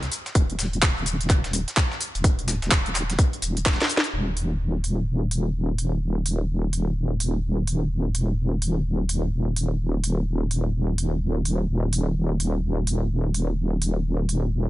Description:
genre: bass house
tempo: 127 BPM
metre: 4/4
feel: swing 62% on 16ths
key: unclear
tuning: A4 = 439 Hz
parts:
  - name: wobble bass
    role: bass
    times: 0.0-14.7 s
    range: Eb1 to Db2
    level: -23 LUFS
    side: equal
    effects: chorus, tube saturation, sidechain pumping
  - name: dusty soul sampler-style drum kit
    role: drums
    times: 0.0-4.1 s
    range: hi-hat, snare drum, tambourine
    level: -34 LUFS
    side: left 1 dB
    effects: none
  - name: garage drum kit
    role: drums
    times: 0.0-14.4 s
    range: handclaps, hi-hat, shaker, snare drum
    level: -26 LUFS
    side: equal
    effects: none
  - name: electronic kick drum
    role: drums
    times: 0.4-3.8 s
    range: none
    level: -22 LUFS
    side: equal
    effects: none
room: digital ambience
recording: nothing above 10.6 kHz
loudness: -22 LUFS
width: side -17 dB against mid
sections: 0.0-4.1 A section; 4.1-14.7 B section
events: drum fill 3.7-4.1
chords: none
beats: | 0.35 0.82 1.30 1.77 | 2.24 2.71 3.19 3.66 | 4.13 4.60 5.08 5.55 | 6.02 6.49 6.97 7.44 | 7.91 8.38 8.86 9.33 | 9.80 10.27 10.75 11.22 | 11.69 12.16 12.64 13.11 | 13.58 14.05 14.53

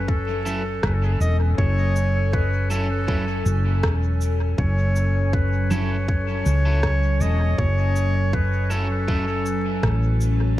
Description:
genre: ambient dub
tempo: 80 BPM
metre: 4/4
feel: swing 54% on 16ths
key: F# minor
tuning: A4 = 443 Hz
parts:
  - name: clear clarinet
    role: melody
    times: 0.0-10.2 s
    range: G#4 to D#5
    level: -28 LUFS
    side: right 1 dB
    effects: dub echo
  - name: warbly tape-like pad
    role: sustained chords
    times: 0.0-10.6 s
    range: F#3 to G#5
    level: -29 LUFS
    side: left 1 dB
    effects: chorus, built-in reverb, phaser
  - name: hollow-body short-scale fingered electric bass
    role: bass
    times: 0.0-10.5 s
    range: E1 to C#2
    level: -21 LUFS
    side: equal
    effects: none
  - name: electronic kick drum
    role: drums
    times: 0.1-10.0 s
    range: none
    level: -23 LUFS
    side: equal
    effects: none
  - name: electric guitar at the edge of break-up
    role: stabs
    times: 0.5-9.2 s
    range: F#3 to A4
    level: -34 LUFS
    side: right 1 dB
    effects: vintage 12-bit sampler grit, dub echo
  - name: electronic cabasa, rim click and congas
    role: drums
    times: 0.5-10.4 s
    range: none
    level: -32 LUFS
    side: right 1 dB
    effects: dub echo
room: light reverb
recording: vinyl crackle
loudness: -19 LUFS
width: side -14 dB against mid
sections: 0.0-10.6 A section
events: none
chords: 0.0 F#m7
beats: 0.08 0.83 | 1.58 2.33 3.08 3.83 | 4.58 5.33 6.08 6.83 | 7.58 8.33 9.08 9.83 | 10.58

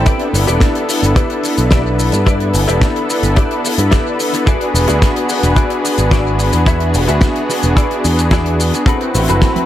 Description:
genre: nu-disco, nu disco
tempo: 109 BPM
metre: 4/4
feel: straight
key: unclear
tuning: A4 = 440 Hz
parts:
  - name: warm analog pad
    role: accompaniment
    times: 0.0-9.7 s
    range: B3 to B4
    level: -17 LUFS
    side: equal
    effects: chorus, sidechain pumping, analog delay
  - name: muted studio string section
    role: sustained chords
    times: 0.0-9.7 s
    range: E4 to B5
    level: -24 LUFS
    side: left 1 dB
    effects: vintage 12-bit sampler grit, sidechain pumping
  - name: direct-recorded clean electric guitar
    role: riff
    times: 0.0-9.6 s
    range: C4 to E5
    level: -22 LUFS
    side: left 2 dB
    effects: ensemble chorus, analog delay
  - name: picked electric bass with an envelope filter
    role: bass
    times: 0.0-9.4 s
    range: E1 to G2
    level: -15 LUFS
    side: equal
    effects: sidechain pumping
  - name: damped 70s drum kit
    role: drums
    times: 0.1-9.7 s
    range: hi-hat, shaker, snare drum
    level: -21 LUFS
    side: left 2 dB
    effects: analog delay
  - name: kick drum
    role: drums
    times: 0.1-9.5 s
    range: none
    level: -13 LUFS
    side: equal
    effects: none
  - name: egg shaker and congas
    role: percussion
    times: 8.9-9.7 s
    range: none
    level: -24 LUFS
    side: right 5 dB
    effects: none
room: light reverb, small room ambience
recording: echo-heavy mix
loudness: -11 LUFS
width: side -12 dB against mid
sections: 0.0-9.7 A section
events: none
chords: 0.1 G6; 4.5 E9; 8.9 Am69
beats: | 0.06 0.61 1.16 1.72 | 2.27 2.82 3.37 3.92 | 4.47 5.02 5.57 6.12 | 6.67 7.22 7.77 8.32 | 8.87 9.42

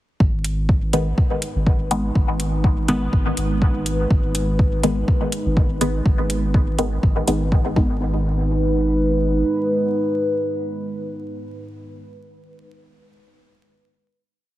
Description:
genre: dub techno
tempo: 123 BPM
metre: 4/4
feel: swing 54% on 16ths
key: G# minor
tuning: A4 = 440 Hz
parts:
  - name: dark analog pad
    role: sustained chords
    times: 1.3-12.0 s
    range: G#3 to B4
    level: -24 LUFS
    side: equal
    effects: chorus, phaser, sidechain pumping
  - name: soft dub sub bass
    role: bass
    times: 0.2-9.4 s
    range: G#1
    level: -23 LUFS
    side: equal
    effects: sidechain pumping
  - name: electronic kick drum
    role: drums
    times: 0.2-7.9 s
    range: none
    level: -18 LUFS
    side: equal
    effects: small room ambience
  - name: electronic hi-hat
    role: drums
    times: 0.4-7.4 s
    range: none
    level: -27 LUFS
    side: equal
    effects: small room ambience
  - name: filtered dub chord stab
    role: stabs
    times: 0.9-12.0 s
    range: D#3 to B3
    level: -24 LUFS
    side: left 1 dB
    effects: phaser, dub echo
room: light reverb, digital ambience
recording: heavily compressed radio sound, vinyl crackle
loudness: -18 LUFS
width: side -15 dB against mid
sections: 0.2-8.0 groove; 8.0-11.9 final hit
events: filter sweep on synth stab 0.2-8.0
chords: 0.2 G#m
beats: | 0.20 0.69 1.18 1.67 | 2.15 2.64 3.13 3.62 | 4.10 4.59 5.08 5.57 | 6.05 6.54 7.03 7.52 | 8.01 8.49 8.98 9.47 | 9.96 10.45 10.93 11.42

